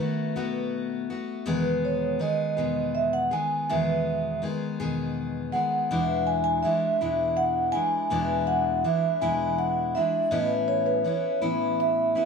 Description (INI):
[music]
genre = acoustic folk duo or small band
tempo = 54 BPM (dotted quarters)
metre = 6/8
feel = straight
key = E major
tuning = A4 = 439 Hz
[part]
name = picked steel-string acoustic guitar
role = accompaniment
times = 0.0-12.3 s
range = E2 to G#4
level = -26 LUFS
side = left 3 dB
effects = none
[part]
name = vibraphone with soft mallets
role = second line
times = 1.8-12.3 s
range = B4 to G#5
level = -25 LUFS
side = right 3 dB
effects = none
[sound]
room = light reverb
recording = dark, warm production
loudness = -24 LUFS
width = side -5 dB against mid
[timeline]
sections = 0.0-12.3 A section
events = vibraphone solo 0.0-12.3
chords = 0.0 B7; 1.5 Emaj7; 5.9 E7; 10.3 Aadd9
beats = 0.36 | 1.47 2.58 | 3.68 4.79 | 5.89 7.00 | 8.11 9.21 | 10.31 11.42